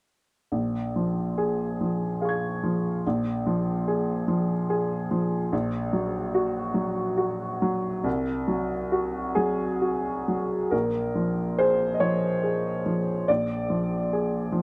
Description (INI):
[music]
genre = neoclassical minimalist piano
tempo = 47 BPM (dotted quarters)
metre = 6/8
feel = rubato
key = Bb minor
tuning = A4 = 440 Hz
[part]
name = clear baby grand piano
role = solo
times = 0.5-14.6 s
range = Bb1 to Ab6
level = -26 LUFS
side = equal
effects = none
[sound]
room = moderate studio reverb, RT60 0.6 s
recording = none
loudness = -27 LUFS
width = mono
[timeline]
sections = 0.5-10.7 A section; 10.7-14.6 B section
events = none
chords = 0.5 Bbm7; 3.0 Bb5; 5.5 Gb/Bb; 8.1 Ab7/C; 10.7 Bbm7